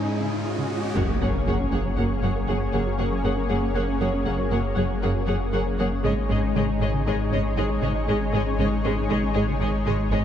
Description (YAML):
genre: cinematic, hybrid orchestral and electronic film score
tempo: 118 BPM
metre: 5/4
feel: straight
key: unclear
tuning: A4 = 440 Hz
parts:
  - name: rich studio viola section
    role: accompaniment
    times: 0.0-10.2 s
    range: G#3 to G#4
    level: -30 LUFS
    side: equal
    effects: none
  - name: analog string pad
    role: sustained chords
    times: 0.0-10.2 s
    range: G#3 to D#5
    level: -28 LUFS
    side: left 3 dB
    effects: ensemble chorus
  - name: tight sequenced synth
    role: arpeggios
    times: 0.0-10.2 s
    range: C#3 to F#4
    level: -32 LUFS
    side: equal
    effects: chorus, ping-pong delay
  - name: rich symphonic cello section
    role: bass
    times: 0.0-10.2 s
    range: F#2 to G#2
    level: -30 LUFS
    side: right 1 dB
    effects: none
  - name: riser and impact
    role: sound effects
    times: 0.0-3.5 s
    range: none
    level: -30 LUFS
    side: equal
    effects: none
  - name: rich symphonic violin section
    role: second line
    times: 1.0-10.2 s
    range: C#5 to F#5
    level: -33 LUFS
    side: left 4 dB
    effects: none
  - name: rich symphonic double bass section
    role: bass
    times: 1.0-10.2 s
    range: F#1 to G#1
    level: -30 LUFS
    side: right 2 dB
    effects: none
  - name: saturated sub bass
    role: bass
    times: 1.0-10.2 s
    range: F#1 to G#1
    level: -28 LUFS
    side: equal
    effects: none
room: wet concert hall reverb, RT60 2.6 s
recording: dark, warm production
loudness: -22 LUFS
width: side -9 dB against mid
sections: 1.0-10.2 A section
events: riser 0.0-1.0; impact 1.0-3.5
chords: 0.0 C#sus2/G#; 1.0 F#add9; 6.0 C#sus2/G#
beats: 0.45 | 0.96 1.47 1.98 2.48 2.99 | 3.50 4.01 4.52 5.03 5.54 | 6.04 6.55 7.06 7.57 8.08 | 8.59 9.10 9.60 10.11